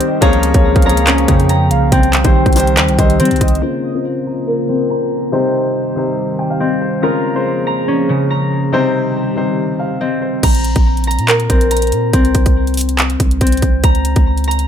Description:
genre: hip hop, trap.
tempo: 141 BPM.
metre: 4/4.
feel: half-time.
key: unclear.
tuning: A4 = 440 Hz.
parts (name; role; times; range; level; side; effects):
warm velvety synth lead; second line; 0.0-3.6 s; C5 to G5; -22 LUFS; right 3 dB; chorus, digital delay.
dark concert grand piano; accompaniment; 0.0-10.5 s; C3 to G5; -18 LUFS; left 2 dB; low-pass filter.
dark analog pad; sustained chords; 0.0-10.4 s; Db3 to Ab4; -21 LUFS; equal; chorus, low-pass filter.
concert harp; arpeggios; 0.0-14.7 s; Db3 to Bb5; -17 LUFS; left 1 dB; low-pass filter, digital delay.
trap drum kit; drums; 0.0-3.6, 10.4-14.7 s; crash cymbal, handclaps, hi-hat, kick drum; -14 LUFS; equal; none.
long sustained 808-style bass; bass; 0.2-3.6, 10.4-14.7 s; Bb1 to G3; -16 LUFS; equal; none.
room: little or no reverb.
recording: none.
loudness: -12 LUFS.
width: side -9 dB against mid.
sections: 0.0-3.6 A section; 3.6-10.4 B section; 10.4-14.7 C section.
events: filter sweep 3.6-10.4.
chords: 0.2 Db6; 1.9 Cm; 3.6 Bbmadd9; 5.3 Cm; 7.0 Db6; 8.7 Cm; 10.4 Bbsus2; 12.1 N.C.; 13.8 Db5.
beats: | 0.22 0.65 1.07 1.50 | 1.92 2.35 2.77 3.20 | 3.62 4.05 4.47 4.90 | 5.33 5.75 6.18 6.60 | 7.03 7.45 7.88 8.30 | 8.73 9.16 9.58 10.01 | 10.43 10.86 11.28 11.71 | 12.13 12.56 12.99 13.41 | 13.84 14.26.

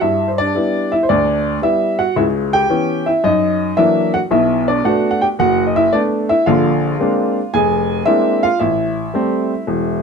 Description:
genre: solo jazz.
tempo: 112 BPM.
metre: 4/4.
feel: swing 68% on 8ths.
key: G major.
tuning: A4 = 440 Hz.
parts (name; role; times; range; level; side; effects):
clear upright piano; solo; 0.0-10.0 s; E1 to Ab5; -14 LUFS; equal; none.
room: moderate club reverb, RT60 0.9 s.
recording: none.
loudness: -14 LUFS.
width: side -5 dB against mid.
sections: 0.0-10.0 A section.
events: none.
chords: 0.0 G6; 2.2 C#m7b5; 3.2 F#7b13; 4.3 Bm7; 6.5 Bb9; 8.6 Am7.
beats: | 0.01 0.55 1.08 1.62 | 2.16 2.69 3.23 3.77 | 4.30 4.84 5.38 5.91 | 6.45 6.99 7.52 8.06 | 8.60 9.13 9.67.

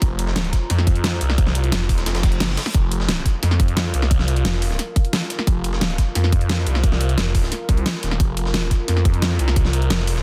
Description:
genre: dark technical drum and bass.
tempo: 176 BPM.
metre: 4/4.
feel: straight.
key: unclear.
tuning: A4 = 440 Hz.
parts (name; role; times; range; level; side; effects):
deep dark ambient pad; sustained chords; 0.0-10.2 s; F4 to Bb5; -34 LUFS; equal; chorus, built-in reverb, sidechain pumping.
phased detuned saw bass; bass; 0.0-10.2 s; Eb1 to F2; -22 LUFS; equal; phaser, overdrive.
breakbeat sampler-style drum kit; drums; 0.0-10.2 s; hi-hat, snare drum; -34 LUFS; equal; high-pass filter on snare, studio reverb, high-pass filter on hats, high-pass filter on room.
dubstep drum kit; drums; 0.0-10.1 s; hi-hat, snare drum; -27 LUFS; equal; studio reverb.
electronic kick drum; drums; 0.0-9.6 s; none; -20 LUFS; equal; studio reverb.
reverse cymbal; sound effects; 2.3-2.7 s; none; -36 LUFS; equal; none.
room: little or no reverb.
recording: dense, heavily limited modern master.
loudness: -20 LUFS.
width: mono.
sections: 0.0-10.2 A section.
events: reverse cymbal 2.3-2.7.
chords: 0.0 F5.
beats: | 0.02 0.36 0.70 1.04 | 1.38 1.72 2.06 2.40 | 2.75 3.09 3.43 3.77 | 4.11 4.45 4.79 5.13 | 5.47 5.81 6.15 6.50 | 6.84 7.18 7.52 7.86 | 8.20 8.54 8.88 9.22 | 9.56 9.90.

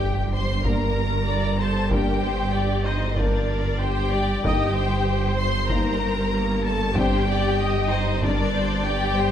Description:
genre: cinematic, hybrid orchestral and electronic film score.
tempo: 95 BPM.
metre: 4/4.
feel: straight.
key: G minor.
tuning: A4 = 440 Hz.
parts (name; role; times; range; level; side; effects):
rich symphonic violin section; melody; 0.0-9.3 s; D5 to C6; -28 LUFS; left 5 dB; none.
warm symphonic violin section; second line; 0.0-9.3 s; D4 to C5; -29 LUFS; left 3 dB; none.
pure sine sub bass; bass; 0.0-9.3 s; G1; -29 LUFS; equal; none.
rich symphonic cello section; bass; 0.0-9.3 s; G2; -27 LUFS; right 3 dB; none.
rich symphonic double bass section; bass; 0.0-9.3 s; G1; -29 LUFS; right 4 dB; none.
impact; sound effects; 0.0-1.9 s; none; barely audible; none; none.
felt-muted upright piano; texture; 0.0-7.0 s; D5 to G6; -40 LUFS; left 1 dB; none.
warm French horn section; sustained chords; 0.6-8.4 s; Bb3 to Eb4; -32 LUFS; left 2 dB; none.
taiko ensemble; drums; 0.6-8.8 s; none; -28 LUFS; equal; none.
rich symphonic viola section; accompaniment; 0.7-9.3 s; Bb3 to Eb5; -29 LUFS; right 2 dB; none.
room: moderate scoring stage reverb, RT60 1.6 s.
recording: none.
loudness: -20 LUFS.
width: side -9 dB against mid.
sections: 0.0-9.3 A section.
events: impact 0.0-1.9.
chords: 0.0 Gm; 4.4 Eb/G; 7.0 Csus2/G.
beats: 0.01 0.65 1.28 | 1.91 2.54 3.17 3.80 | 4.43 5.07 5.70 6.33 | 6.96 7.59 8.22 8.86.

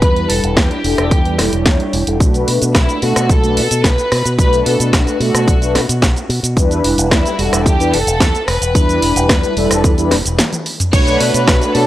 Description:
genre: nu-disco, nu disco.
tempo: 110 BPM.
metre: 4/4.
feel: straight.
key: B minor.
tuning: A4 = 440 Hz.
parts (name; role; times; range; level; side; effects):
rich studio violin section; melody; 0.0-11.9 s; E4 to C#5; -20 LUFS; equal; tape echo.
mellow synth brass; accompaniment; 0.0-11.9 s; G3 to C#5; -18 LUFS; left 1 dB; chorus, sidechain pumping.
fingered electric bass with an envelope filter; bass; 0.0-11.9 s; E1 to B2; -18 LUFS; equal; none.
electronic kick drum; drums; 0.0-11.6 s; none; -14 LUFS; equal; none.
house drum kit; drums; 0.0-11.9 s; crash cymbal, hi-hat, rim click, shaker, snare drum, toms; -18 LUFS; equal; none.
lush unison pad; sustained chords; 10.9-11.9 s; D4 to C#5; -21 LUFS; right 1 dB; chorus, sidechain pumping.
room: digital ambience.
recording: dry, gritty hardware recording.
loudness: -11 LUFS.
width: side -14 dB against mid.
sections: 0.0-10.9 A section.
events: filter sweep on analog polysynth 0.0-10.9; break 10.4-10.9; drum fill 10.4-10.9.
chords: 0.0 Em7; 2.2 Bm7; 6.6 Em7; 10.9 Bm7.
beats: | 0.02 0.57 1.11 1.66 | 2.21 2.75 3.30 3.84 | 4.39 4.93 5.48 6.02 | 6.57 7.12 7.66 8.21 | 8.75 9.30 9.84 10.39 | 10.93 11.48.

